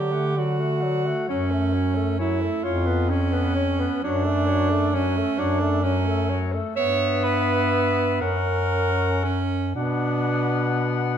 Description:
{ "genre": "classical, lyrical piece for single-reed quartet", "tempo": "38-45 BPM (dotted quarters)", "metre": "6/8", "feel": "rubato", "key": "unclear", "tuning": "A4 = 439 Hz", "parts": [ { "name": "clear clarinet", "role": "melody", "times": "0.0-11.2 s", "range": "A4 to F#5", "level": "-30 LUFS", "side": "left 10 dB", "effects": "none" }, { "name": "warm alto saxophone", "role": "second line", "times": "0.0-11.2 s", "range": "C#4 to C#5", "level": "-24 LUFS", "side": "right 5 dB", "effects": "none" }, { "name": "mellow tenor saxophone", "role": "accompaniment", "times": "0.0-11.2 s", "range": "F#3 to C#4", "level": "-29 LUFS", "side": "left 5 dB", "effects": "none" }, { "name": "warm bass clarinet", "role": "bass", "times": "0.0-11.2 s", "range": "E#2 to D3", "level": "-25 LUFS", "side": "equal", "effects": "none" } ], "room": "moderate recital hall reverb, RT60 1.3 s", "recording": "none", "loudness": "-20 LUFS", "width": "side -8 dB against mid", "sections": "0.0-11.2 A section", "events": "none", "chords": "0.0 D; 1.3 F#m; 2.6 C#7/E#; 4.0 F#m; 6.8 Em/G; 8.2 F#; 9.8 Bm", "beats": "| 1.29 2.65 | 4.04 5.39 | 6.78 8.22 | 9.75" }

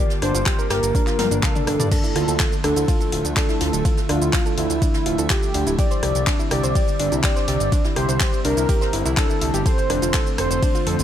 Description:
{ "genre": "progressive house", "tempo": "124 BPM", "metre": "4/4", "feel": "straight", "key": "unclear", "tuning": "A4 = 440 Hz", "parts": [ { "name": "warm velvety synth lead", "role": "melody", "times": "0.0-11.0 s", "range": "E4 to D5", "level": "-25 LUFS", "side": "equal", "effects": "chorus, sidechain pumping, tape echo" }, { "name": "evolving wavetable pad", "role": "sustained chords", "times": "0.0-11.0 s", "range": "D3 to E5", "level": "-28 LUFS", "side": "right 2 dB", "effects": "chorus, built-in reverb, sidechain pumping" }, { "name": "soft round pluck", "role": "arpeggios", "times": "0.0-11.0 s", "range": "D4 to F5", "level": "-26 LUFS", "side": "equal", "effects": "chorus, sidechain pumping, tape echo" }, { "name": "deep house drum kit", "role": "drums", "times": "0.1-11.0 s", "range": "crash cymbal, handclaps, hi-hat, ride cymbal, rim click, shaker, toms", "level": "-26 LUFS", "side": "equal", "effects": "overdrive" }, { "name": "vintage brush drum kit", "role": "drums", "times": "0.1-11.0 s", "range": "hi-hat, snare drum", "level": "-35 LUFS", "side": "right 2 dB", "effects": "none" }, { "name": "fat analog bass", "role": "bass", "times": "0.2-11.0 s", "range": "D1 to G2", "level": "-24 LUFS", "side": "equal", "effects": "sidechain pumping" }, { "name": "electronic kick drum", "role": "drums", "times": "0.5-10.7 s", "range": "none", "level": "-21 LUFS", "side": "equal", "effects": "overdrive" } ], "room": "digital ambience", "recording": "none", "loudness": "-18 LUFS", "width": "side -10 dB against mid", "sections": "0.0-11.0 A section", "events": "drum fill 1.2-1.9", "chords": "0.0 Gm7; 1.9 Dmadd9; 5.8 Cadd9; 9.7 F6", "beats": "0.46 0.95 1.43 | 1.92 2.40 2.88 3.37 | 3.85 4.33 4.82 5.30 | 5.79 6.27 6.75 7.24 | 7.72 8.21 8.69 9.17 | 9.66 10.14 10.62" }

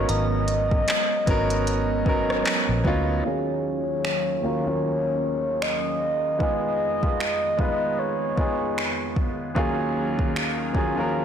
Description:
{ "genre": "contemporary R&B", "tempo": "76 BPM", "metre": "4/4", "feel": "swing 58% on 16ths", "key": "Eb minor", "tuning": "A4 = 437 Hz", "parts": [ { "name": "mellow horn-like synth lead", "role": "melody", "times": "0.0-9.2 s", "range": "Db5 to Eb5", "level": "-27 LUFS", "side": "equal", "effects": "chorus, low-pass filter, digital delay" }, { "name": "clear concert grand piano", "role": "accompaniment", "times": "0.0-11.2 s", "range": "Eb2 to Cb5", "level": "-26 LUFS", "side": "equal", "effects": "low-pass filter" }, { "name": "hollow soft pad", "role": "sustained chords", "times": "0.0-11.2 s", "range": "Eb2 to Ab4", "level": "-34 LUFS", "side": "right 1 dB", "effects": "ensemble chorus, low-pass filter" }, { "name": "vintage muted fingered electric bass", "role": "bass", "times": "0.0-3.2 s", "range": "Ab1 to D2", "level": "-26 LUFS", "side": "equal", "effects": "none" }, { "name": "glassy synth bell", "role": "texture", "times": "0.0-2.0 s", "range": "Bb5", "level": "-40 LUFS", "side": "right 4 dB", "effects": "none" }, { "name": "smooth R&B drum kit", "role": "drums", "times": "0.1-11.0 s", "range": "finger snaps, handclaps, hi-hat, kick drum, rim click", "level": "-26 LUFS", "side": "equal", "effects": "soft clipping on snare" } ], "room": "light reverb, digital ambience", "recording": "blown-out, overdriven recording, overdrive", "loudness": "-22 LUFS", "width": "side -8 dB against mid", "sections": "0.0-3.2 A section; 3.2-11.2 B section", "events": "filter sweep 3.2-11.2", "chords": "0.0 Abm11; 3.2 Ebm11; 6.4 Fm7b5; 9.6 Ebm11", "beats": "| 0.09 0.88 1.67 2.46 | 3.25 4.04 4.83 5.62 | 6.41 7.19 7.98 8.77 | 9.56 10.35 11.14" }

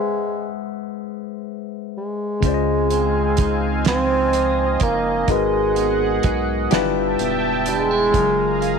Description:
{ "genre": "slow six-eight R&B", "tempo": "42 BPM (dotted quarters)", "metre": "6/8", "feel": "straight", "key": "Db major", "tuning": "A4 = 440 Hz", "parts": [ { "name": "dark bassoon", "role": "melody", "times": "0.0-8.8 s", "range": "Ab3 to C4", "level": "-21 LUFS", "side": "right 2 dB", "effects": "tape echo" }, { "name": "barky tine electric piano", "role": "accompaniment", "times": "0.0-8.8 s", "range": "Db3 to A5", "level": "-24 LUFS", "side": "left 14 dB", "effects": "phaser" }, { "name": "electric guitar at the edge of break-up", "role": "second line", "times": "2.4-8.8 s", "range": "G2 to F4", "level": "-27 LUFS", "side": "right 12 dB", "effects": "lush chorus" }, { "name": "warm analog pad", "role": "sustained chords", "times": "2.8-8.8 s", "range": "C4 to Bb5", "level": "-26 LUFS", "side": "right 2 dB", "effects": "chorus" }, { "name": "round analog bass", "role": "bass", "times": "2.4-8.8 s", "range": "E1 to Db2", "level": "-27 LUFS", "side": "right 1 dB", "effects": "none" }, { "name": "cloth-damped thuddy drum kit", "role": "drums", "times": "2.4-8.8 s", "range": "hi-hat, kick drum, snare drum", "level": "-22 LUFS", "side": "right 4 dB", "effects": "none" } ], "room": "light reverb, studio reverb", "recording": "1960s-style stereo with parts hard left and right", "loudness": "-17 LUFS", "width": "side -6 dB against mid", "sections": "0.0-8.8 A section", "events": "none", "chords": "0.0 Ab7alt; 2.4 Dbmaj9; 5.3 Abm7; 6.7 G13; 8.1 Gbmaj9", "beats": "1.00 | 2.43 3.86 | 5.29 6.72 | 8.14" }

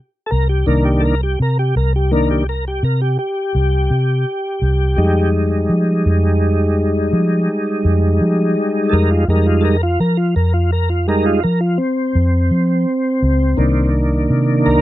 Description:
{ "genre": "slow blues", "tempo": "56 BPM (dotted quarters)", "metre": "12/8", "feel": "straight", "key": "unclear", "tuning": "A4 = 439 Hz", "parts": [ { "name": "tonewheel organ", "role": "sustained chords", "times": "0.3-14.8 s", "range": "Eb3 to Bb4", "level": "-17 LUFS", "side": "equal", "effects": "slow rotary speaker, chorus vibrato" }, { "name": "vintage muted fingered electric bass", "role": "bass", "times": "0.3-14.8 s", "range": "C2 to F3", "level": "-16 LUFS", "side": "equal", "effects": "none" } ], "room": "little or no reverb", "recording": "dry, close 1970s-style studio recording", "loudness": "-14 LUFS", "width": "side -15 dB against mid", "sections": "0.0-14.8 A section", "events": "tonewheel organ solo 0.0-14.8", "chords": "0.0 Cm7; 5.0 Fm7; 13.6 Cm7", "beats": "| 0.67 1.75 2.83 3.91 | 4.99 6.06 7.14 8.22 | 9.29 10.37 11.44 12.52 | 13.59 14.66" }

